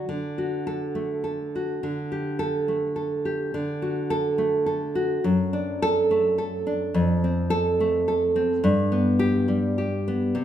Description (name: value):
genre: romantic piece for solo classical guitar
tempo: 105 BPM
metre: 3/4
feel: rubato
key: D major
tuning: A4 = 440 Hz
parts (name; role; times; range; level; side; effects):
- nylon-string guitar; solo; 0.0-10.4 s; F2 to A4; -22 LUFS; right 1 dB; none
room: wet recital hall reverb, RT60 1.5 s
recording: recorded in a church or concert hall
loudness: -22 LUFS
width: side -10 dB against mid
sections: 0.1-10.4 A section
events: none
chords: 0.1 D; 1.8 Dsus4; 3.6 D; 5.2 D/F#; 6.9 F; 8.6 G